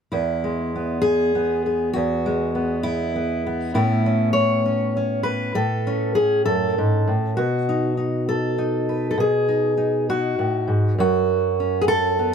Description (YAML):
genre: folk, solo fingerstyle acoustic guitar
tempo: 66 BPM (dotted quarters)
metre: 6/8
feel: straight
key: E major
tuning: A4 = 440 Hz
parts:
  - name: fingerpicked steel-string acoustic guitar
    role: solo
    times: 0.1-12.3 s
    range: E2 to C#5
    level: -19 LUFS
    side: equal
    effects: none
room: light reverb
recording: none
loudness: -19 LUFS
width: side -7 dB against mid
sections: 0.1-12.3 A section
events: none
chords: 0.1 E; 3.7 Aadd9; 7.4 B; 11.0 F#m